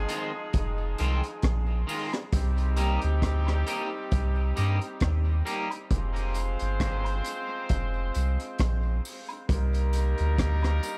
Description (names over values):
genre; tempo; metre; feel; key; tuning
dub reggae; 67 BPM; 4/4; swing 55% on 16ths; F dorian; A4 = 440 Hz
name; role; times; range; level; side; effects
clear horn section; second line; 0.0-11.0 s; F3 to C5; -37 LUFS; equal; dub echo
soft dub sub bass; bass; 0.0-10.8 s; F1 to G2; -28 LUFS; equal; none
electric guitar at the edge of break-up; accompaniment; 0.1-5.7 s; Eb3 to G4; -38 LUFS; equal; lush chorus, dub echo
crunchy breakbeat drum kit; drums; 0.1-11.0 s; hi-hat, kick drum, rim click; -33 LUFS; equal; none
tambourine and woodblock; percussion; 0.1-11.0 s; none; -48 LUFS; equal; dub echo
room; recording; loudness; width
studio reverb; echo-heavy mix; -28 LUFS; mono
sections
0.0-11.0 A section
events
filter sweep 9.5-11.0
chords
0.0 Fm7; 2.3 Cm7; 5.9 Fm; 9.5 Cm7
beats
0.54 1.44 | 2.33 3.22 4.12 5.01 | 5.91 6.80 7.70 8.59 | 9.49 10.38